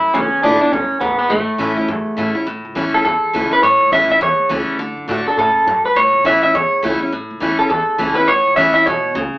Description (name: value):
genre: rockabilly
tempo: 206 BPM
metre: 4/4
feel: swing 62% on 8ths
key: A major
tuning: A4 = 436 Hz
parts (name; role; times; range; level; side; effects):
- electric guitar through a small old amp; melody; 0.0-9.2 s; A3 to E5; -13 LUFS; equal; none
- picked steel-string acoustic guitar; accompaniment; 0.0-9.4 s; E2 to F#4; -20 LUFS; equal; none
- upright bass; bass; 0.0-9.4 s; E1 to A2; -26 LUFS; equal; none
room: moderate small room ambience, RT60 0.5 s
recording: band playing live in one room, AM radio sound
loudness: -13 LUFS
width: side -19 dB against mid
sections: 0.0-2.5 A section; 2.5-9.4 B section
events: none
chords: 0.1 E7; 1.3 A; 4.8 D; 6.0 A